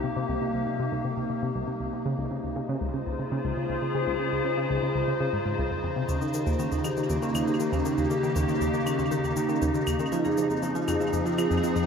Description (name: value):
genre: ambient, sequencer-driven space music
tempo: 119 BPM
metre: 4/4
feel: straight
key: unclear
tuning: A4 = 435 Hz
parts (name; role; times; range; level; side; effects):
- evolving wavetable pad; sustained chords; 0.0-11.9 s; C3 to C5; -28 LUFS; left 1 dB; chorus, built-in reverb
- tight sequenced synth; riff; 0.0-11.8 s; C2 to F3; -30 LUFS; left 1 dB; chorus, tape echo
- wind-like tuned noise texture; texture; 0.0-11.9 s; Eb4 to Eb5; -40 LUFS; equal; built-in reverb
- vibraphone with soft mallets; arpeggios; 6.1-11.8 s; Bb3 to Ab4; -30 LUFS; moving between left 1 dB and right 5 dB; auto-pan, tape echo
- cabasa and claves; percussion; 6.1-11.9 s; none; -40 LUFS; left 4 dB; tape echo
room: moderate plate reverb, RT60 2.7 s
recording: echo-heavy mix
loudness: -25 LUFS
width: side -6 dB against mid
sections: 0.0-11.9 A section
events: fade-in on synth texture 0.0-11.9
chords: 0.0 Cm7; 2.1 Dbmaj7; 6.1 Eb7; 10.1 Fm7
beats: | 0.04 0.54 1.05 1.55 | 2.06 2.56 3.06 3.57 | 4.07 4.58 5.08 5.58 | 6.09 6.59 7.10 7.60 | 8.11 8.61 9.11 9.62 | 10.12 10.63 11.13 11.63